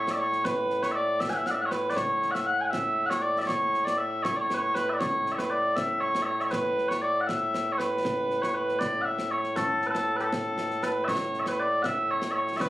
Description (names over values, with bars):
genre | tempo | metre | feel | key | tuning
scottish traditional, Scottish pipe music | 79 BPM (dotted quarters) | 6/8 | straight | A major | A4 = 440 Hz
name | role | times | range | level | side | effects
mellow small bagpipes | melody | 0.0-12.7 s | A2 to G#5 | -25 LUFS | equal | none
concert snare drum and concert bass drum | drums | 0.1-12.7 s | none | -36 LUFS | right 1 dB | none
room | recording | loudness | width
light reverb | recorded on a phone in the room, studio reverb | -25 LUFS | side -16 dB against mid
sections
0.0-11.1 A section; 11.1-12.7 A section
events
none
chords
none